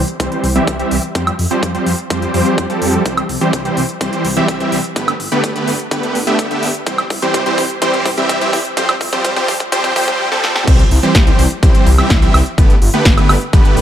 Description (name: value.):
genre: EDM, festival progressive house.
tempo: 126 BPM.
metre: 4/4.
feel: straight.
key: C major.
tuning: A4 = 440 Hz.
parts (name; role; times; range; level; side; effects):
wide detuned saw bass; bass; 0.0-13.8 s; G1 to F2; -19 LUFS; equal; chorus, sidechain pumping.
big-room dance drum kit; drums; 0.1-13.8 s; crash cymbal, hi-hat, snare drum, woodblock; -20 LUFS; right 1 dB; none.
supersaw chords; riff; 0.2-13.8 s; D3 to E5; -15 LUFS; right 1 dB; sidechain pumping, low-pass filter, tape echo.
electronic kick drum; drums; 0.2-13.6 s; none; -14 LUFS; equal; high-pass filter on kick, high-pass filter on room.
room: light reverb, digital ambience.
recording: dark, warm production, high-pass filter.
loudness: -12 LUFS.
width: side -10 dB against mid.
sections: 0.0-10.7 A section; 10.7-13.8 B section.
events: build-up 0.0-10.7; filter sweep on supersaw synth 0.0-10.7; filter sweep 0.0-10.7; drum fill 3.1-10.2, 10.3-10.7; drop 10.7-13.8.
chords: 0.0 C; 1.2 Fsus2; 3.1 C; 5.0 Gadd9; 6.9 C; 8.8 Fsus2; 10.7 C; 12.6 Gadd9.